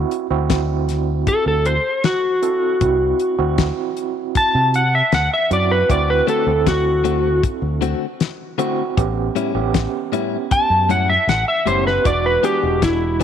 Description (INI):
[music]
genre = straight-eighth soul blues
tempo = 78 BPM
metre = 4/4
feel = straight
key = unclear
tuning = A4 = 440 Hz
[part]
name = overdriven tine electric piano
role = accompaniment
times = 0.0-13.2 s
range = G#3 to A4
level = -23 LUFS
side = right 13 dB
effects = medium tremolo
[part]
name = fingered electric bass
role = bass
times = 0.0-13.2 s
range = E1 to C3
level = -21 LUFS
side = equal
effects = none
[part]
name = damped 70s drum kit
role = drums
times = 0.1-13.2 s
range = hi-hat, kick drum, snare drum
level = -21 LUFS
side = left 4 dB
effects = none
[part]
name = electric slide guitar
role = melody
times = 1.3-13.2 s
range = E4 to A5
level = -17 LUFS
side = equal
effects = none
[part]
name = direct-recorded clean electric guitar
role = stabs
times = 6.3-13.2 s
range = A2 to G#4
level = -25 LUFS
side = left 13 dB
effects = none
[sound]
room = light reverb, studio reverb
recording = 1960s-style stereo with parts hard left and right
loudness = -16 LUFS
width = side -8 dB against mid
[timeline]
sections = 0.0-13.2 A section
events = electric slide guitar solo 0.0-13.2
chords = 0.0 D7; 9.0 A7; 12.1 E7